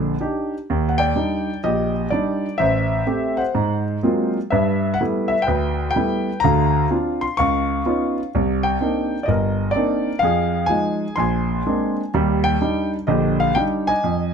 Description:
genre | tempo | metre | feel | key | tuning
solo jazz | 126 BPM | 4/4 | swing 67% on 8ths | Eb major | A4 = 440 Hz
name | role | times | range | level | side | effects
warm concert grand piano | solo | 0.0-14.3 s | G1 to Db6 | -18 LUFS | equal | none
room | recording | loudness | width
light reverb | close, detailed microphones | -18 LUFS | side -6 dB against mid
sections
0.7-14.3 A section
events
none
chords
0.0 Ebmaj7; 2.6 Am7; 3.5 Ab13; 4.5 G69; 6.4 Bbadd9/D; 7.4 Db9; 8.3 Cm9; 10.2 Fm7; 11.2 Bb9; 12.1 Ebmaj7

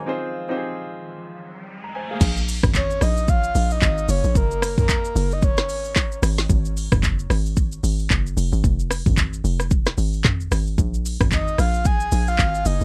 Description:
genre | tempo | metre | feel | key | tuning
amapiano | 112 BPM | 4/4 | swing 58% on 16ths | unclear | A4 = 440 Hz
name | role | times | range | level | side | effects
warm grand piano | accompaniment | 0.0-2.4 s | C4 to Bb5 | -31 LUFS | equal | none
warm analog pad | sustained chords | 0.0-2.2 s | Eb3 to F4 | -40 LUFS | equal | chorus
riser | sound effects | 1.1-2.2 s | none | -39 LUFS | equal | none
hollow log drum bass | bass | 2.2-12.8 s | F1 to Bb1 | -24 LUFS | equal | none
deep house drum kit | drums | 2.2-12.8 s | crash cymbal, handclaps, hi-hat, kick drum, rim click, shaker, snare drum, toms | -23 LUFS | equal | vintage 12-bit sampler grit
breathy flute-like synth lead | melody | 2.8-6.2, 11.3-12.8 s | Bb4 to Ab5 | -27 LUFS | equal | chorus, tape echo
room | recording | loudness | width
little or no reverb | none | -21 LUFS | mono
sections
0.0-2.2 A section; 2.2-12.8 B section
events
break 0.1-2.2; riser 1.1-2.2; drop 2.2-12.8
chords
0.1 Fm7; 2.2 Db69/Ab; 4.1 Gbadd9; 6.2 Fm; 10.8 Absus2

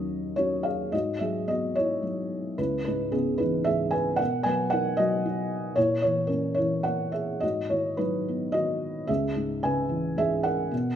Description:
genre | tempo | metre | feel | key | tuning
classical, lyrical solo piano | 104-116 BPM | 3/4 | rubato | G# minor | A4 = 441 Hz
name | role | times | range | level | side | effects
felt-muted upright piano | solo | 0.0-11.0 s | C#2 to G#5 | -24 LUFS | equal | none
room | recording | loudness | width
moderate recital hall reverb, RT60 1.5 s | none | -24 LUFS | side -9 dB against mid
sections
0.9-11.0 A section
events
none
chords
0.0 Ebm7; 0.9 G#m7; 2.6 C#m7; 4.2 Bmaj7; 5.8 A#m7b5; 7.4 G#m7; 9.1 C#m7

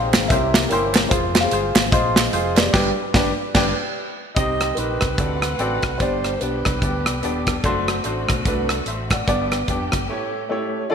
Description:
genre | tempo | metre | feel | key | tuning
uptempo gospel | 147 BPM | 4/4 | swing 60% on 8ths | unclear | A4 = 439 Hz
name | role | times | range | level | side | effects
felt-muted upright piano | melody | 0.0-7.4, 10.5-10.9 s | C4 to F5 | -26 LUFS | left 1 dB | none
clear baby grand piano | accompaniment | 0.0-10.9 s | G2 to F#5 | -24 LUFS | equal | wide subtle chorus
fingered electric bass | bass | 0.0-10.1 s | Eb1 to D2 | -28 LUFS | equal | none
modern studio drum kit | drums | 0.1-10.0 s | crash cymbal, hi-hat, kick drum, rim click, snare drum | -21 LUFS | equal | none
group handclap | percussion | 0.1-2.6 s | none | -28 LUFS | right 10 dB | none
warm alto saxophone | melody | 4.4-7.5 s | B4 to Eb5 | -28 LUFS | right 5 dB | none
warm studio string section | sustained chords | 4.4-10.9 s | B2 to F#5 | -33 LUFS | left 2 dB | none
room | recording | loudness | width
moderate lush hall reverb, RT60 1.9 s, small room ambience | bright 1980s-style digital production | -18 LUFS | side -7 dB against mid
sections
0.0-4.4 A section; 4.4-10.9 B section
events
band accent 2.7-4.4; break 10.1-10.9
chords
0.3 C7b9; 1.1 Fm; 2.7 G; 4.4 Cm; 5.2 D7; 6.0 G; 7.6 D7/F#; 9.3 G; 10.1 A7

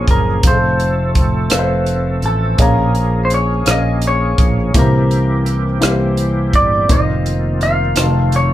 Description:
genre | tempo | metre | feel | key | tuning
slow gospel | 56 BPM (dotted quarters) | 6/8 | straight | unclear | A4 = 441 Hz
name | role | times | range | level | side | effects
clean electric guitar | melody | 0.0-8.5 s | A4 to F5 | -19 LUFS | equal | warbly pitch drift
warm concert grand piano | accompaniment | 0.0-8.5 s | Bb2 to C6 | -20 LUFS | left 1 dB | none
bright tonewheel organ | sustained chords | 0.0-8.5 s | Eb3 to A4 | -22 LUFS | right 1 dB | fast rotary speaker, overdrive, chorus vibrato
fingered electric bass | bass | 0.0-8.5 s | F1 to C2 | -17 LUFS | equal | none
crisp fusion drum kit | drums | 0.1-8.5 s | hi-hat, kick drum, rim click | -16 LUFS | right 1 dB | none
room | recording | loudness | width
moderate studio ambience, RT60 0.5 s | band playing live in one room | -12 LUFS | side -13 dB against mid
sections
0.0-8.5 A section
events
none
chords
0.4 F; 2.6 Bbm7; 4.7 C7; 6.9 F7sus4; 8.0 F7

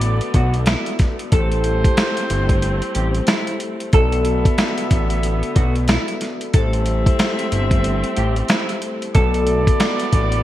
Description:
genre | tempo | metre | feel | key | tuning
hip hop, boom-bap hip-hop | 92 BPM | 4/4 | swing 62% on 16ths | A dorian | A4 = 440 Hz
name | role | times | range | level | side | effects
vibraphone with soft mallets | accompaniment | 0.0-10.4 s | A3 to E5 | -26 LUFS | left 3 dB | high-pass filter, low-pass filter
warm studio string section | sustained chords | 0.0-10.4 s | D3 to C4 | -30 LUFS | right 2 dB | high-pass filter, low-pass filter
clear horn section | stabs | 0.0-10.4 s | A3 to E5 | -28 LUFS | right 1 dB | high-pass filter, low-pass filter, ping-pong delay
fat analog bass | bass | 0.0-10.4 s | G1 to B1 | -20 LUFS | equal | none
dusty soul sampler-style drum kit | drums | 0.0-10.4 s | hi-hat, kick drum, snare drum | -18 LUFS | equal | gated reverb
nylon-string guitar | melody | 0.3-10.0 s | E4 to A4 | -25 LUFS | equal | analog chorus, high-pass filter, low-pass filter
room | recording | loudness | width
light reverb, small room ambience | bright 1980s-style digital production, vinyl crackle | -16 LUFS | side -14 dB against mid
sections
0.0-10.4 A section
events
none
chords
0.0 Bm7; 1.3 Am7; 3.9 Bm7; 6.5 Am7; 9.1 Bm7

